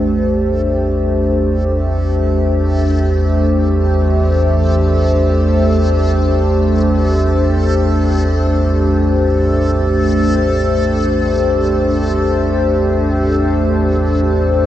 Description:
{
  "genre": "dark ambient drone",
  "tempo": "free time",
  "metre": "none",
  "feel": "none",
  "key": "A minor",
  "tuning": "A4 = 436 Hz",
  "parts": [
    { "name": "dark analog pad", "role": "sustained chords", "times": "0.0-14.7 s", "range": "A3 to C5", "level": "-15 LUFS", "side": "equal", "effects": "chorus, phaser" },
    { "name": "deep rumbling drone", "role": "drone", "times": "0.0-14.7 s", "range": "A1 to E2", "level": "-15 LUFS", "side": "equal", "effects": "built-in reverb, wide subtle chorus" },
    { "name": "backwards swelling texture", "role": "texture", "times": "0.0-14.7 s", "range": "A4", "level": "-26 LUFS", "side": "left 1 dB", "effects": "built-in reverb" }
  ],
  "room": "moderate huge ambient reverb, RT60 8.4 s",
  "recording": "worn, warbling old tape, cassette tape, warbly pitch drift",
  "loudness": "-12 LUFS",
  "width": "side -12 dB against mid",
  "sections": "0.0-14.7 A section",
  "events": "fade-in on synth texture 0.0-14.7; filter sweep on synth drone 0.0-14.7",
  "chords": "0.0 Am"
}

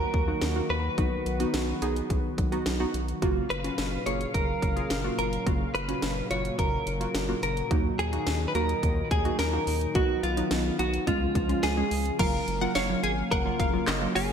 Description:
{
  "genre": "synth-pop",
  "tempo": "107 BPM",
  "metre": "4/4",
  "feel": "straight",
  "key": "F# major",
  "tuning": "A4 = 440 Hz",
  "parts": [
    { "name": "direct-recorded clean electric guitar", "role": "melody", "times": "0.0-14.3 s", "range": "E#4 to C#5", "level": "-30 LUFS", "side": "equal", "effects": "wide subtle chorus, ping-pong delay" },
    { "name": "warbly dusty pluck", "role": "accompaniment", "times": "0.0-14.3 s", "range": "F#3 to G#4", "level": "-32 LUFS", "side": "right 2 dB", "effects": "chorus" },
    { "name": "warm analog pad", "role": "sustained chords", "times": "0.0-14.3 s", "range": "A#2 to E#5", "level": "-34 LUFS", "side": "left 1 dB", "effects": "chorus" },
    { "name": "round analog bass", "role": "bass", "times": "0.0-14.3 s", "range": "F#1 to D#2", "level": "-32 LUFS", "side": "equal", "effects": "none" },
    { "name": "house drum kit", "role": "drums", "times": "0.1-14.3 s", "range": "crash cymbal, handclaps, hi-hat, kick drum, snare drum", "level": "-30 LUFS", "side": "equal", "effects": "overdrive, gated reverb" },
    { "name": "analog pluck", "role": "second line", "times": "12.2-14.3 s", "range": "C#5 to G#5", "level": "-34 LUFS", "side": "left 3 dB", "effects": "chorus, ping-pong delay" }
  ],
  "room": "moderate lush hall reverb, RT60 1.8 s",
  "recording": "bright 1980s-style digital production",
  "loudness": "-25 LUFS",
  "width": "side -7 dB against mid",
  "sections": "0.0-12.2 A section; 12.2-14.3 B section",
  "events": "none",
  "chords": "0.0 D#m; 1.0 B; 3.2 F#maj7; 7.7 D#m; 10.0 B; 11.1 C#; 12.2 F#maj7"
}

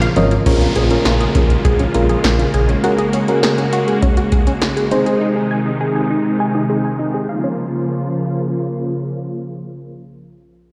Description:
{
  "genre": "synth-pop",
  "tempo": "101 BPM",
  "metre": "4/4",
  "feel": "straight",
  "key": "Bb minor",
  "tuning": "A4 = 439 Hz",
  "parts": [
    { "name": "string machine, violas", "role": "sustained chords", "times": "0.0-9.9 s", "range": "C3 to Gb4", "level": "-22 LUFS", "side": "equal", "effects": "ensemble chorus, low-pass filter" },
    { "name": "unison pluck", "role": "arpeggios", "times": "0.0-7.5 s", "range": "F3 to Ab5", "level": "-24 LUFS", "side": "equal", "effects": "low-pass filter, analog delay" },
    { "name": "smooth synth bass", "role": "bass", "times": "0.0-2.7 s", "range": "Ab1 to Bb1", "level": "-19 LUFS", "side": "equal", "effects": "none" },
    { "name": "electro analog drum machine", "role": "drums", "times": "0.0-5.2 s", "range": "crash cymbal, hi-hat, kick drum, snare drum", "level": "-21 LUFS", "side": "equal", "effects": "none" },
    { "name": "FM electric piano", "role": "accompaniment", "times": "0.2-5.2 s", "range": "C4 to Eb5", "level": "-22 LUFS", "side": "equal", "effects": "low-pass filter" },
    { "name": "downlifter", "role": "sound effects", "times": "0.5-5.2 s", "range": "none", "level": "-29 LUFS", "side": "equal", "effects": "none" }
  ],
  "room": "moderate lush hall reverb, RT60 2.4 s",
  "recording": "played on a big sound system in a bare room, large studio reverb, faint mains hum",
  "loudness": "-17 LUFS",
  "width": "mono",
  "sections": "0.5-10.0 A section",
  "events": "filter sweep 0.5-10.0",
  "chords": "0.5 Bbm7; 2.8 Gbadd9; 4.9 Ab; 7.3 Bbm"
}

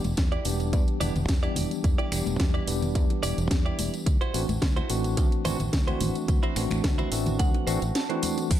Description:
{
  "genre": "nu-disco, nu disco",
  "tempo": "108 BPM",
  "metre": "4/4",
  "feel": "swing 53% on 16ths",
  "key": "unclear",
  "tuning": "A4 = 440 Hz",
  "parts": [
    { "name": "fingered electric bass", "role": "bass", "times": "0.0-8.6 s", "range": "E1 to E2", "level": "-29 LUFS", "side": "equal", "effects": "tube saturation" },
    { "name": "house drum kit", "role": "drums", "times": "0.0-8.6 s", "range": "crash cymbal, finger snaps, hi-hat, shaker, snare drum", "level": "-33 LUFS", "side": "right 1 dB", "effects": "overdrive" },
    { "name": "congas, tambourine and bongos", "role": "percussion", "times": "0.0-8.5 s", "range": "none", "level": "-35 LUFS", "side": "left 3 dB", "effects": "none" },
    { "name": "direct-recorded clean electric guitar", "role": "riff", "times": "0.2-8.5 s", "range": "E4 to A5", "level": "-35 LUFS", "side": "right 4 dB", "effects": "wide subtle chorus, low-pass filter, tape echo" },
    { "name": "electronic kick drum", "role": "drums", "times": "0.2-8.6 s", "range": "none", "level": "-24 LUFS", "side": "equal", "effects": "overdrive" },
    { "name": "tine electric piano", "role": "accompaniment", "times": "0.4-8.5 s", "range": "E3 to G4", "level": "-30 LUFS", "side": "equal", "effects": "medium stereo tremolo, sidechain pumping, tape echo" }
  ],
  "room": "light reverb",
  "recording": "none",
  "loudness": "-23 LUFS",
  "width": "side -12 dB against mid",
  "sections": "0.0-8.5 A section",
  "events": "clean electric guitar fill 6.8-8.5",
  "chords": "0.0 Em7; 4.1 D9"
}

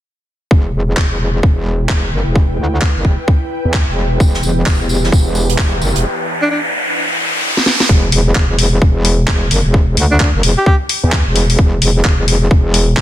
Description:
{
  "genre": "bass house",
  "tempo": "130 BPM",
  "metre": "4/4",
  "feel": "swing 61% on 16ths",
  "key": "E minor",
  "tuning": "A4 = 440 Hz",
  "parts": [
    { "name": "metallic wobble bass", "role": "bass", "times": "0.5-13.0 s", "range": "E1 to E2", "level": "-14 LUFS", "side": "equal", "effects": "chorus, tube saturation, sidechain pumping" },
    { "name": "electronic kick drum", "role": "drums", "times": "0.5-13.0 s", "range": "none", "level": "-12 LUFS", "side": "equal", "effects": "studio reverb" },
    { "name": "ethereal airy pad", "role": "texture", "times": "1.2-6.0 s", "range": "E4 to G5", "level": "-26 LUFS", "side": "equal", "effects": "ensemble chorus, built-in reverb, sidechain pumping" },
    { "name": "garage drum kit", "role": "drums", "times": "1.0-13.0 s", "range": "handclaps, hi-hat, snare drum", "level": "-18 LUFS", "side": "equal", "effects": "soft clipping on snare, studio reverb" },
    { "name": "sweeping resonant pad", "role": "sustained chords", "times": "4.2-6.0 s", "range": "E3 to G4", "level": "-23 LUFS", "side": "right 2 dB", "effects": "chorus, sidechain pumping" },
    { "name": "natural country drum kit", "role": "drums", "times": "4.2-6.0 s", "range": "hi-hat, snare drum, tambourine", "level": "-22 LUFS", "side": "right 2 dB", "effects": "high-pass filter on hats, studio reverb, high-pass filter on snare, high-pass filter on perc, high-pass filter on room" },
    { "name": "riser", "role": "sound effects", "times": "5.1-7.9 s", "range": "none", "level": "-18 LUFS", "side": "equal", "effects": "none" },
    { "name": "breathy alto saxophone", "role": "melody", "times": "6.4-6.6, 10.1-10.8 s", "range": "D4 to G4", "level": "-19 LUFS", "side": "equal", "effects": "digital delay" }
  ],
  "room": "small room ambience",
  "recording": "dense, heavily limited modern master",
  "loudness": "-11 LUFS",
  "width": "side -13 dB against mid",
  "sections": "0.5-7.9 A section; 7.9-13.0 B section",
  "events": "fade-in on ambient pad 0.5-7.9; riser 5.1-7.9; drum fill 7.5-7.9",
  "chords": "0.5 Em; 7.9 N.C."
}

